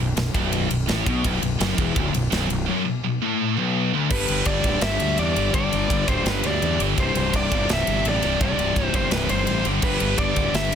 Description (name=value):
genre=heavy metal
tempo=168 BPM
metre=4/4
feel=straight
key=unclear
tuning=A4 = 439 Hz
part: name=distorted electric guitar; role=riff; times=0.0-10.8 s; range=B1 to G3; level=-26 LUFS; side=left 9 dB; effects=distortion
part: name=scooped high-gain guitar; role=riff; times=0.0-10.8 s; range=B1 to G3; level=-26 LUFS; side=right 15 dB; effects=distortion
part: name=fuzz fingered electric bass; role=bass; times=0.0-10.8 s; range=B0 to E2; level=-26 LUFS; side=right 1 dB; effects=overdrive
part: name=tight metal drum kit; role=drums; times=0.2-10.8 s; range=crash cymbal, kick drum, ride cymbal, snare drum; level=-27 LUFS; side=right 1 dB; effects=none
part: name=high-gain lead guitar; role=melody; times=4.1-10.8 s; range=B4 to E5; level=-25 LUFS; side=left 1 dB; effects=distortion, digital delay
room=studio ambience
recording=dense, heavily limited modern master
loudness=-19 LUFS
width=side -8 dB against mid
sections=0.0-4.1 A section; 4.1-10.8 B section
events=half time 4.1-10.8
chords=0.0 Bm; 4.1 G5; 7.0 C5; 9.7 G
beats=0.17 0.52 0.88 | 1.24 1.60 1.96 2.32 | 2.67 3.03 3.39 3.75 | 4.11 4.46 4.82 5.18 | 5.54 5.90 6.25 6.61 | 6.97 7.33 7.69 8.05 | 8.40 8.76 9.12 9.48 | 9.84 10.20 10.55